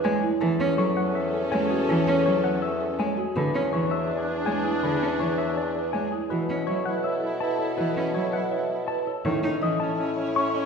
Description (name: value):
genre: classical, minimalist pattern music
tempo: 163 BPM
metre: 4/4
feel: straight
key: E mixolydian, B mixolydian from 6.3 s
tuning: A4 = 440 Hz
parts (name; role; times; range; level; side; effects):
- clean electric guitar; melody; 0.0-10.7 s; G#4 to C#6; -31 LUFS; left 5 dB; none
- clear soprano saxophone; second line; 0.0-10.7 s; C#4 to E4; -32 LUFS; right 1 dB; none
- clear cello; accompaniment; 0.0-9.8 s; D3 to D#4; -28 LUFS; equal; none
- rich studio string section; sustained chords; 0.0-10.7 s; C#4 to C#5; -34 LUFS; left 1 dB; none
- marimba with soft mallets; arpeggios; 0.0-10.7 s; E4 to D#5; -30 LUFS; right 4 dB; none
- warm bassoon; bass; 0.0-10.7 s; E2 to B2; -30 LUFS; left 2 dB; none
room: wet scoring stage reverb, RT60 1.6 s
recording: heard from further back in the room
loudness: -23 LUFS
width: side -6 dB against mid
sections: 0.0-6.3 A section; 6.3-10.7 B section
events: none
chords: 0.4 Amaj7/E; 3.4 E7; 6.3 B7sus4; 9.3 A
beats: 0.05 | 0.42 0.79 1.15 1.52 | 1.89 2.26 2.62 2.99 | 3.36 3.73 4.10 4.47 | 4.83 5.20 5.57 5.94 | 6.31 6.67 7.04 7.41 | 7.78 8.15 8.52 8.88 | 9.25 9.62 9.99 10.36